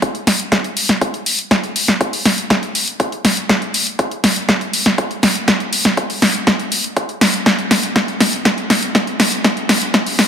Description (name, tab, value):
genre	progressive house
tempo	121 BPM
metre	4/4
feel	straight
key	none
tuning	none
part	electronic kick drum	drums	0.0-10.0 s	none	-22 LUFS	equal	overdrive, high-pass filter on kick, studio ambience, high-pass filter on room
part	house drum kit	drums	0.0-10.3 s	hi-hat, snare drum	-14 LUFS	equal	studio ambience
room	moderate lush hall reverb, RT60 1.8 s, digital ambience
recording	high-pass filter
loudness	-14 LUFS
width	side -8 dB against mid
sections	0.0-10.3 A section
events	build-up 0.0-10.3; drum fill 0.0-10.3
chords	none